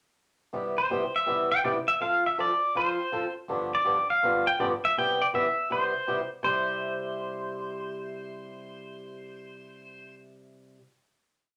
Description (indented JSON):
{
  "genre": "country",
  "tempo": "163 BPM",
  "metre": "4/4",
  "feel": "swing 65% on 8ths",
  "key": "C major",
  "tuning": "A4 = 440 Hz",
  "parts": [
    { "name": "picked swing-style acoustic guitar", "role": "accompaniment", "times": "0.5-10.8 s", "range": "G2 to A4", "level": "-34 LUFS", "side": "equal", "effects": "none" },
    { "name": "pedal steel guitar", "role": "melody", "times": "0.8-10.2 s", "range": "C5 to G5", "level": "-29 LUFS", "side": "equal", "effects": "none" }
  ],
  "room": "wet studio reverb, RT60 0.5 s",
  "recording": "none",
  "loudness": "-27 LUFS",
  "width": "mono",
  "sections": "0.5-6.4 A section; 6.4-9.4 final chord",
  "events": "none",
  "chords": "0.5 Cmaj7; 2.0 F; 3.5 G7; 5.0 Cmaj7; 6.4 C"
}